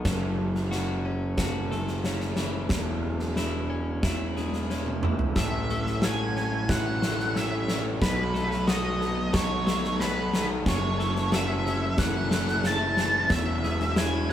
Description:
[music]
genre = post-rock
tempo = 90 BPM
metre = 4/4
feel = straight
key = E major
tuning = A4 = 439 Hz
[part]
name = twelve-string electric guitar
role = arpeggios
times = 0.0-14.3 s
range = E2 to F#4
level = -33 LUFS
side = left 3 dB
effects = none
[part]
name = huge arena drum kit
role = drums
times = 0.0-14.3 s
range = kick drum, snare drum, toms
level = -28 LUFS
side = equal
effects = none
[part]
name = fuzz picked electric bass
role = bass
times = 0.1-14.3 s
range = E1 to B1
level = -29 LUFS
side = right 1 dB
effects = overdrive
[part]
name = octave-fuzz lead guitar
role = melody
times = 5.4-14.3 s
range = B4 to A5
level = -29 LUFS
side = right 1 dB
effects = distortion
[part]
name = clear studio string section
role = sustained chords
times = 5.4-14.3 s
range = E3 to E5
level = -38 LUFS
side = equal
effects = none
[sound]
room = moderate stone room reverb, RT60 1.2 s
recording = band playing live in one room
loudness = -24 LUFS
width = side -10 dB against mid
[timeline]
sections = 0.0-5.4 A section; 5.4-14.3 B section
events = drum fill 4.7-5.4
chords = 0.1 F#m7; 2.7 E6; 5.4 A6; 8.0 B7; 10.7 F#m7; 13.3 E6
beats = | 0.05 0.71 1.38 2.04 | 2.71 3.37 4.04 4.70 | 5.37 6.03 6.69 7.36 | 8.02 8.68 9.35 10.01 | 10.67 11.33 11.99 12.65 | 13.31 13.97

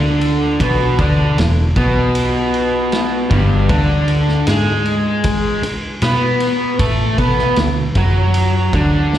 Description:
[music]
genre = blues rock power trio and southern rock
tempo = 78 BPM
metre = 4/4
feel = straight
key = unclear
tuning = A4 = 440 Hz
[part]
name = raw garage guitar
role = riff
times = 0.0-9.2 s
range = E2 to B4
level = -17 LUFS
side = equal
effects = overdrive, slapback echo
[part]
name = vintage muted fingered electric bass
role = bass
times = 0.0-9.2 s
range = E1 to B2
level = -17 LUFS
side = equal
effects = none
[part]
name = vintage drum kit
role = drums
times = 0.2-9.2 s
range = kick drum, ride cymbal, snare drum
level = -21 LUFS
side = equal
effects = none
[sound]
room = small room ambience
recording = live gig heard through the venue's PA, recital hall reverb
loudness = -13 LUFS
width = side -11 dB against mid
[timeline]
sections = 0.0-9.2 A section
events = none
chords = 0.0 E5; 3.7 D5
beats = | 0.60 1.37 2.14 2.92 | 3.69 4.46 5.24 6.01 | 6.79 7.56 8.34 9.12

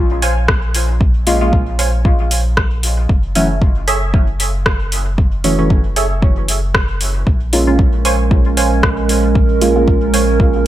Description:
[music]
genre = dub techno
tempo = 115 BPM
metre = 4/4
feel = swing 56% on 16ths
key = Bb minor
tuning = A4 = 440 Hz
[part]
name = pure sine sub bass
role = bass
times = 0.0-10.7 s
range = Gb1 to Bb1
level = -17 LUFS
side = equal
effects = sidechain pumping
[part]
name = wavetable chord stab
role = riff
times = 0.2-10.2 s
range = Ab4 to Ab5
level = -21 LUFS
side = right 3 dB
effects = lush chorus, sidechain pumping, dub echo
[part]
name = deep house drum kit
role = drums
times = 0.2-10.3 s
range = hi-hat, rim click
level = -19 LUFS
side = equal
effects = none
[part]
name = electronic kick drum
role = drums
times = 0.5-10.5 s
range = none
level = -14 LUFS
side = equal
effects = none
[part]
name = deep mellow chord stab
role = stabs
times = 1.3-10.0 s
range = Fb3 to F4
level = -19 LUFS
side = equal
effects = chorus, phaser, sidechain pumping, dub echo
[part]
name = warbly tape-like pad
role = sustained chords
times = 7.3-10.7 s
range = Ab3 to Bb4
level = -17 LUFS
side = right 4 dB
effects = chorus, built-in reverb, sidechain pumping
[sound]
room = light reverb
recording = none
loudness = -12 LUFS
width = side -13 dB against mid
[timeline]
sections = 0.0-10.7 A section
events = none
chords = 0.0 Bbm7; 3.1 Gbm7; 7.3 Bbm7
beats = 0.48 | 1.01 1.53 2.05 2.57 | 3.09 3.62 4.14 4.66 | 5.18 5.70 6.22 6.75 | 7.27 7.79 8.31 8.83 | 9.35 9.88 10.40

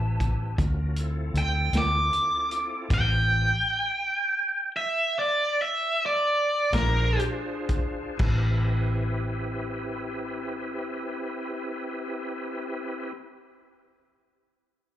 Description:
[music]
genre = slow blues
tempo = 39-52 BPM (dotted quarters)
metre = 12/8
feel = straight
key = A minor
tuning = A4 = 441 Hz
[part]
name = biting lead guitar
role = melody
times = 0.0-7.2 s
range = Bb4 to D6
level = -24 LUFS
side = right 1 dB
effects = overdrive, slapback echo
[part]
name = bright tonewheel organ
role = sustained chords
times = 0.0-13.1 s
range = C4 to C5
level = -34 LUFS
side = equal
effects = slow rotary speaker, overdrive, chorus vibrato
[part]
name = vintage muted fingered electric bass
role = bass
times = 0.0-13.1 s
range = A1 to D2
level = -25 LUFS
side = equal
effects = none
[part]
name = vintage drum kit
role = drums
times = 0.2-8.4 s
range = crash cymbal, hi-hat, kick drum, snare drum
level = -29 LUFS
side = equal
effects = none
[sound]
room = little or no reverb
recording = live gig heard through the venue's PA, club reverb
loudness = -24 LUFS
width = side -12 dB against mid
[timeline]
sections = 0.0-8.2 A section; 8.2-14.3 B section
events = lead electric guitar solo 0.0-8.2; slowing down 1.4-8.2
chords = 0.0 Am9; 0.6 Dm9; 2.9 Am9; 6.7 Bb7; 8.2 Am9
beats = 0.60 1.75 | 2.91 4.12 5.38 6.73 | 8.20 9.73 11.26 12.80

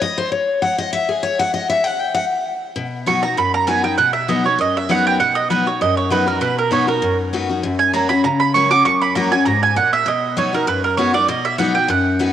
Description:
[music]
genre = bluegrass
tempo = 197 BPM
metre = 4/4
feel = straight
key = B major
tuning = A4 = 440 Hz
[part]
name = picked steel-string acoustic guitar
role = accompaniment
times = 0.0-12.3 s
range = F#2 to G5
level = -18 LUFS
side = left 4 dB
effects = cassette tape
[part]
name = mandolin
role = melody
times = 3.1-12.3 s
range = A#4 to D6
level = -16 LUFS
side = right 6 dB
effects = cassette tape
[sound]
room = moderate lush hall reverb, RT60 2.6 s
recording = home recording on cassette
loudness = -15 LUFS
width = side -10 dB against mid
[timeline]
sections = 0.0-2.8 A section; 2.8-12.3 A section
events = steel-string acoustic guitar solo 0.0-2.8; mandolin solo 2.8-12.3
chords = 0.0 N.C.; 2.8 B; 7.6 F#; 10.1 B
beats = 0.02 | 0.32 0.63 0.93 1.24 | 1.54 1.85 2.15 2.46 | 2.76 3.06 3.37 3.67 | 3.98 4.28 4.59 4.89 | 5.20 5.50 5.80 6.11 | 6.41 6.72 7.02 7.33 | 7.63 7.93 8.24 8.54 | 8.85 9.15 9.46 9.76 | 10.06 10.37 10.67 10.98 | 11.28 11.58 11.89 12.19

